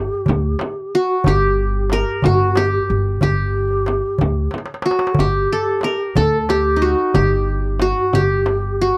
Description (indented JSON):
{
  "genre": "Arabic maqam ensemble",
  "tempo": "61 BPM (dotted quarters)",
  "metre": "6/8",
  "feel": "straight",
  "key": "G maqam nahawand",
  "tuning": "A4 = 440 Hz",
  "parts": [
    { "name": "qanun", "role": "melody", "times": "0.0-9.0 s", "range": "Eb4 to Bb4", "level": "-21 LUFS", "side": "equal", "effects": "none" },
    { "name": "breathy mellow low ney", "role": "second line", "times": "0.0-8.9 s", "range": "F#4 to A4", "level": "-26 LUFS", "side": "equal", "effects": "none" },
    { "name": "upright bass", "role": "bass", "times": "0.0-8.9 s", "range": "G1 to D2", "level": "-23 LUFS", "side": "equal", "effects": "none" },
    { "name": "darbuka", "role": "percussion", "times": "0.3-8.6 s", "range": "none", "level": "-24 LUFS", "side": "equal", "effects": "none" },
    { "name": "frame drum", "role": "percussion", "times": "0.3-8.6 s", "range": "none", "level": "-28 LUFS", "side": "equal", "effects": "none" }
  ],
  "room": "little or no reverb",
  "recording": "dry, close 1970s-style studio recording",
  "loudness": "-18 LUFS",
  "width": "mono",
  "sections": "0.0-5.2 A section; 5.2-9.0 B section",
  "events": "drum fill 4.5-5.2",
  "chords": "none"
}